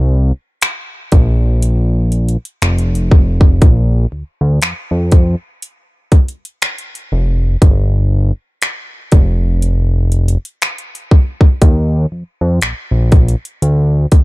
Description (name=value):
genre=contemporary R&B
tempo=60 BPM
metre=4/4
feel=swing 58% on 16ths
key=unclear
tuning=A4 = 440 Hz
part: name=fat analog bass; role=bass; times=0.0-14.2 s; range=F1 to F2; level=-12 LUFS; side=equal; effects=none
part: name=trap drum kit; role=drums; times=0.6-14.2 s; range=finger snaps, hi-hat, kick drum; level=-10 LUFS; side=equal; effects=none
room=little or no reverb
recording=dark, warm production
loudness=-11 LUFS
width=side -21 dB against mid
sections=0.0-14.2 A section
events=none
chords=none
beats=0.62 1.62 2.62 | 3.62 4.62 5.62 6.62 | 7.62 8.62 9.62 10.62 | 11.62 12.62 13.62